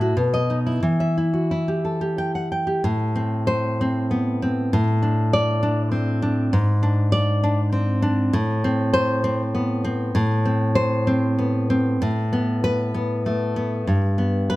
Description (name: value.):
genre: romantic piece for solo classical guitar.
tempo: 88-102 BPM.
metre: 3/4.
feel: rubato.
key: A minor.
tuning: A4 = 439 Hz.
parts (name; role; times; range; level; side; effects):
nylon-string guitar; solo; 0.0-14.6 s; G2 to G5; -19 LUFS; equal; none.
room: light reverb.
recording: close, detailed microphones.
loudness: -19 LUFS.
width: side -18 dB against mid.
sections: 0.0-2.8 A section; 2.8-14.6 B section.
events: none.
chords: 0.1 B; 0.8 Em; 2.8 Am; 4.7 D5/A; 6.5 G#; 8.3 Amadd9; 12.0 Asus2; 13.9 G.